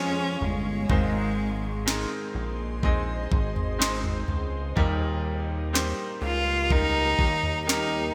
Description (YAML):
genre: pop ballad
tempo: 62 BPM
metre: 4/4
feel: straight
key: unclear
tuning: A4 = 440 Hz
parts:
  - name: warm cello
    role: melody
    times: 0.0-8.1 s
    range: Ab3 to F4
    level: -29 LUFS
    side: equal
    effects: none
  - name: bright concert grand piano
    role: accompaniment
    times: 0.0-8.1 s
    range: Ab2 to Eb5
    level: -34 LUFS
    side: equal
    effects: lush chorus
  - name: ethereal airy pad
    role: sustained chords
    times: 0.1-8.1 s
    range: G4 to Db6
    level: -41 LUFS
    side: equal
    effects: ensemble chorus, built-in reverb, phaser
  - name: chorused synth bass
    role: bass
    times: 0.0-8.1 s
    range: G1 to F2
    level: -33 LUFS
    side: equal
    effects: none
  - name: smooth R&B drum kit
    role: drums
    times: 0.4-7.9 s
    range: kick drum, snare drum, toms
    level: -29 LUFS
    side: equal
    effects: gated reverb
room: moderate lush hall reverb, RT60 2.6 s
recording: bright 1980s-style digital production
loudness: -26 LUFS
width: mono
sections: 0.0-8.1 A section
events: none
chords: 0.0 Db; 0.9 Ab; 4.8 Eb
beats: | 0.90 1.86 2.83 3.80 | 4.77 5.74 6.70 7.67